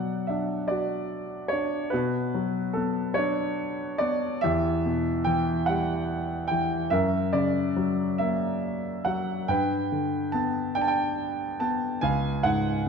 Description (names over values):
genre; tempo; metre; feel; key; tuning
classical, lyrical solo piano; 48 BPM (dotted quarters); 6/8; rubato; B minor; A4 = 442 Hz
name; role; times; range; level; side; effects
clear concert grand piano; solo; 0.0-12.9 s; C#2 to A5; -24 LUFS; equal; none
room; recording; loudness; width
wet recital hall reverb, RT60 1.5 s; none; -24 LUFS; side -5 dB against mid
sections
0.0-12.9 A section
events
none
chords
0.0 Bm; 4.4 Emadd9; 6.9 F#; 9.5 G; 12.0 C#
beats
0.70 | 1.93 3.18 | 4.43 5.67 | 6.92 8.20 | 9.49 10.78 | 12.04